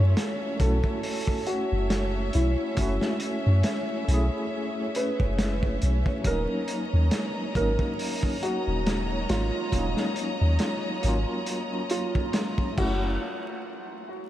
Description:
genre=trip hop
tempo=69 BPM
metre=4/4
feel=swing 56% on 16ths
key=unclear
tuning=A4 = 444 Hz
part: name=tine electric piano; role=accompaniment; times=0.0-13.2 s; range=F#3 to G#4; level=-32 LUFS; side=left 1 dB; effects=medium tremolo, harmonic tremolo, vintage 12-bit sampler grit, tape echo
part: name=rich studio violin section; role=sustained chords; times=0.0-13.2 s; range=C#4 to A#5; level=-34 LUFS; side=equal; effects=vintage 12-bit sampler grit
part: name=soft 808-style bass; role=bass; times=0.0-13.2 s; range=D#1 to F#2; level=-24 LUFS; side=equal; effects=none
part: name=crunchy breakbeat drum kit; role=drums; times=0.2-13.0 s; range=crash cymbal, hi-hat, kick drum, snare drum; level=-30 LUFS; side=equal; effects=vintage 12-bit sampler grit
part: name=felt-muted upright piano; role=melody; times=0.6-13.1 s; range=E4 to B4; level=-32 LUFS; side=right 1 dB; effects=tape echo
room=moderate huge ambient reverb, RT60 6.9 s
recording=dreamy mix soaked in reverb, vinyl crackle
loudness=-24 LUFS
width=side -13 dB against mid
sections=0.0-13.2 A section; 13.2-14.3 B section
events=none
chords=0.0 F#m7; 6.3 D#m7; 12.8 F#m7; 13.2 N.C.

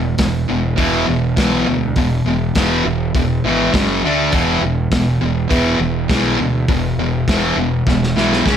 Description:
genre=garage rock duo or trio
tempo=102 BPM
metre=4/4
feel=straight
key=unclear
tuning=A4 = 440 Hz
part: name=fuzz guitar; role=riff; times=0.0-8.6 s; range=E2 to D4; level=-16 LUFS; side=equal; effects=distortion
part: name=fuzz fingered electric bass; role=bass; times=0.0-8.6 s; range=E1 to D2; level=-23 LUFS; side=equal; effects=overdrive, tube saturation
part: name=crunchy breakbeat drum kit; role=drums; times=0.2-8.6 s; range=hi-hat, kick drum, snare drum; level=-19 LUFS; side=equal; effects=none
room=moderate studio reverb, RT60 0.5 s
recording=none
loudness=-14 LUFS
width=side -8 dB against mid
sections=0.0-8.6 A section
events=drum fill 7.9-8.6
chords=0.0 E5; 3.7 F#5; 4.0 D5; 4.3 E5

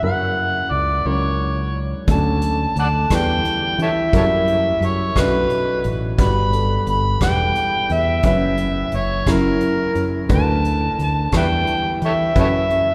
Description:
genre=folk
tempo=58 BPM (dotted quarters)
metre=6/8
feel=straight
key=unclear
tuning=A4 = 440 Hz
part: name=overdriven harmonica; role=melody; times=0.0-12.9 s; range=A4 to B5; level=-22 LUFS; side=equal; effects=none
part: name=warm concert grand piano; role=accompaniment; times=0.0-12.9 s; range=F#1 to B4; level=-26 LUFS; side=equal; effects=none
part: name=fingered electric bass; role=bass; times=0.0-12.9 s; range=E1 to E3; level=-24 LUFS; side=equal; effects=none
part: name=felt-muted upright piano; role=arpeggios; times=2.1-12.7 s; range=E4 to B4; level=-31 LUFS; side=equal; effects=none
part: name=soft brush drum kit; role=drums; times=2.1-12.9 s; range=hi-hat, kick drum, rim click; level=-25 LUFS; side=equal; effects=none
room=wet church reverb, RT60 3.9 s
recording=recorded in a church or concert hall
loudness=-19 LUFS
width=mono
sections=0.0-2.1 A section; 2.1-12.9 B section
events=none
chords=0.0 F#7; 2.1 Dmaj7; 3.1 Em7; 4.1 F#7b9; 5.2 Bm9; 6.2 Gmaj7; 7.2 Em7; 8.2 F#7sus4; 9.3 F#7; 10.3 D6; 11.3 Em7; 12.4 F#7sus4

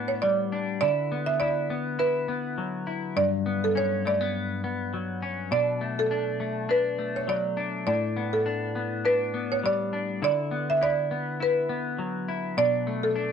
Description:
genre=indie pop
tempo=102 BPM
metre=4/4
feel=swing 55% on 16ths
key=unclear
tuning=A4 = 438 Hz
part: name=buzzing marimba with medium hard mallets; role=melody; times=0.0-13.3 s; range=A4 to E5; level=-26 LUFS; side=right 2 dB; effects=analog chorus, slapback echo
part: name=semi-hollow electric guitar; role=accompaniment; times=0.0-13.3 s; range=G2 to E4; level=-29 LUFS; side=left 4 dB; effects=wide subtle chorus, vibrato effect
room=moderate booth ambience, RT60 0.2 s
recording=dry, close 1970s-style studio recording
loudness=-24 LUFS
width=side -7 dB against mid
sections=0.0-13.3 A section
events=none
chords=0.0 A9sus4; 0.8 D69; 3.2 Gmaj7#11; 5.5 Bm7; 7.9 A9sus4; 10.2 D69; 12.6 Bm7

